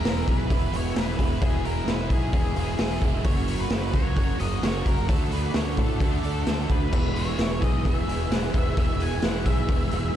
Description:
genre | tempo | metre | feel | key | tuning
rock, shoegaze and dream pop | 131 BPM | 4/4 | straight | unclear | A4 = 440 Hz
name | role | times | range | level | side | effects
octave-fuzz lead guitar | melody | 0.0-10.2 s | G#4 to G#5 | -34 LUFS | left 1 dB | distortion, digital delay
sweeping resonant pad | sustained chords | 0.0-10.2 s | B3 to E6 | -38 LUFS | right 2 dB | chorus
overdriven electric guitar | riff | 0.0-10.2 s | D3 to G#4 | -35 LUFS | left 14 dB | ensemble chorus
overdriven semi-hollow guitar | riff | 0.0-10.2 s | E2 to G#4 | -31 LUFS | right 15 dB | reverse reverb
fuzz fingered electric bass | bass | 0.0-10.1 s | E1 to A2 | -29 LUFS | equal | overdrive
raw garage drum kit | drums | 0.1-10.0 s | crash cymbal, hi-hat, kick drum, snare drum | -25 LUFS | equal | none
direct-recorded clean electric guitar | arpeggios | 6.9-10.2 s | E3 to G#4 | -37 LUFS | left 12 dB | lush chorus, digital delay
room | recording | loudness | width
small room ambience | dark, warm production | -22 LUFS | side -10 dB against mid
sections
0.0-10.2 A section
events
none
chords
0.0 E; 3.2 F#; 5.1 D; 6.9 E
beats
0.04 0.50 0.96 | 1.41 1.87 2.33 2.79 | 3.25 3.71 4.17 4.63 | 5.08 5.54 6.00 6.46 | 6.92 7.38 7.84 8.30 | 8.76 9.22 9.68 10.14

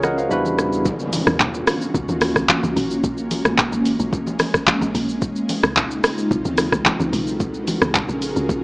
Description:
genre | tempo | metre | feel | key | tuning
amapiano | 110 BPM | 4/4 | straight | unclear | A4 = 440 Hz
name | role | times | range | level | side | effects
barky tine electric piano | accompaniment | 0.0-0.9 s | G3 to B5 | -20 LUFS | equal | none
ethereal airy pad | sustained chords | 0.0-8.6 s | Db3 to F5 | -23 LUFS | equal | ensemble chorus, built-in reverb, sidechain pumping
punchy sub bass | bass | 0.0-0.8 s | Db2 to E2 | -31 LUFS | equal | none
smooth R&B drum kit | drums | 0.0-8.6 s | handclaps, hi-hat, kick drum, rim click, shaker | -19 LUFS | equal | none
congas | percussion | 0.0-8.6 s | none | -28 LUFS | equal | none
impact | sound effects | 0.9-3.0 s | none | -29 LUFS | equal | none
deep log drum bass | bass | 1.3-8.6 s | Ab1 to Eb2 | -26 LUFS | equal | none
room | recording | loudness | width
light reverb, digital ambience | small speaker sound | -17 LUFS | side -26 dB against mid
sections
0.9-8.6 A section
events
tine electric piano fill 0.0-0.9; drop 0.9-8.6; impact 0.9-3.0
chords
0.3 Em9; 0.9 Ebm9; 2.8 Bbm7; 5.2 Dbmaj9; 6.9 Gmaj9; 7.4 Gbmaj9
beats
0.31 | 0.86 1.40 1.95 2.49 | 3.04 3.58 4.13 4.67 | 5.22 5.76 6.31 6.86 | 7.40 7.95 8.49

